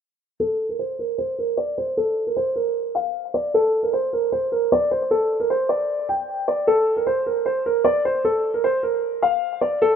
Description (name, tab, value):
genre	hip hop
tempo	153 BPM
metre	4/4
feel	half-time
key	unclear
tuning	A4 = 441 Hz
part	dark grand piano	melody	0.4-10.0 s	A4 to G5	-19 LUFS	equal	low-pass filter
room	light reverb, studio ambience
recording	rough home demo mix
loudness	-19 LUFS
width	side -7 dB against mid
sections	0.4-10.0 A section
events	filter sweep on grand piano 0.4-10.0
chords	none